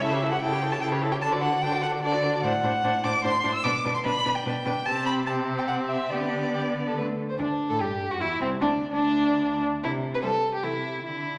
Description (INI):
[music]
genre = quick classical-period movement for string quartet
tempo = 148 BPM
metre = 3/4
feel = straight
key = G major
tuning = A4 = 440 Hz
[part]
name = rich violin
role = melody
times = 0.0-10.7 s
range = C4 to E6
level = -31 LUFS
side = equal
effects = none
[part]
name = rich violin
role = second line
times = 0.0-11.4 s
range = C4 to D5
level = -31 LUFS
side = equal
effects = none
[part]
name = rich viola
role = accompaniment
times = 0.0-10.7 s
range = E3 to A4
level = -34 LUFS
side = equal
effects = none
[part]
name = rich cello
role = bass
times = 0.0-11.4 s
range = C2 to D3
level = -34 LUFS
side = equal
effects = none
[sound]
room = wet recital hall reverb, RT60 1.4 s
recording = none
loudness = -26 LUFS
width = mono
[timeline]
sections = 0.0-7.4 A section; 7.4-11.4 B section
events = none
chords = 0.0 A7/C#; 1.2 D; 2.4 D7/A; 3.6 G/B; 4.9 C5; 6.1 G/D; 7.0 D5; 7.4 G5; 8.6 N.C.; 9.8 C5; 10.6 Am/C (rootless)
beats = | 0.02 0.43 0.82 | 1.23 1.63 2.03 | 2.44 2.84 3.24 | 3.65 4.05 4.46 | 4.86 5.28 5.69 | 6.12 6.55 6.97 | 7.39 7.80 8.21 | 8.62 9.02 9.43 | 9.83 10.23 10.63 | 11.05